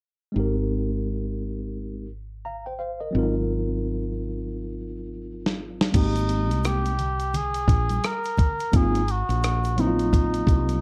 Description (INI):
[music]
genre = hip hop, jazz-hop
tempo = 86 BPM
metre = 4/4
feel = swing 61% on 16ths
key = Ab major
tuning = A4 = 436 Hz
[part]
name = tine electric piano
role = accompaniment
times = 0.3-10.8 s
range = Gb3 to Bb5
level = -30 LUFS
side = equal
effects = overdrive
[part]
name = woody fretless electric bass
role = bass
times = 0.4-10.8 s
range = Ab1 to C2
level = -30 LUFS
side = equal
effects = none
[part]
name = dusty soul sampler-style drum kit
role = drums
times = 5.5-10.8 s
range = crash cymbal, hi-hat, kick drum, rim click, snare drum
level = -26 LUFS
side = equal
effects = none
[part]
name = tube shaker and congas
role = percussion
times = 5.9-10.8 s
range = none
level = -37 LUFS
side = equal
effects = none
[part]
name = trumpet with cup mute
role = melody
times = 6.0-10.8 s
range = Eb4 to Bb4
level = -30 LUFS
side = equal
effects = analog delay
[sound]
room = light reverb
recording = dark, warm production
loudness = -25 LUFS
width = mono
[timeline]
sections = 0.4-5.9 A section; 5.9-10.8 B section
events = drum fill 5.2-5.9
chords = 0.4 Abmaj9; 3.2 Ab13; 5.9 Abmaj9; 8.7 Ab13